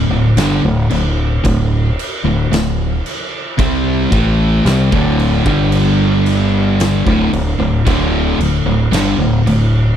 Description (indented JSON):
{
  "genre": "stoner and doom metal",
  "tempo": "56 BPM",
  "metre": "4/4",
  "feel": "straight",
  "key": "unclear",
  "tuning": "A4 = 440 Hz",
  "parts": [
    { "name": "distorted electric guitar", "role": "riff", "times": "0.0-9.9 s", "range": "D2 to C4", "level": "-18 LUFS", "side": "right 1 dB", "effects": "overdrive" },
    { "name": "fuzz guitar", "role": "riff", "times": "0.0-9.9 s", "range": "D2 to C4", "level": "-15 LUFS", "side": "equal", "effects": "distortion" },
    { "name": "growling fingered electric bass", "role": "bass", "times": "0.0-10.0 s", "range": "D1 to C2", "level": "-18 LUFS", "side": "equal", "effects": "overdrive, tube saturation" },
    { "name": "oversized low-tuned drum kit", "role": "drums", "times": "0.4-9.7 s", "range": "crash cymbal, kick drum, snare drum", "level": "-20 LUFS", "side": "equal", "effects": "none" }
  ],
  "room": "small room ambience",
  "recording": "none",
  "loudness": "-12 LUFS",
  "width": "side -9 dB against mid",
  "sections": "0.0-10.0 A section",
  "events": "none",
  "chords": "0.0 D5; 5.5 G5; 7.1 D5"
}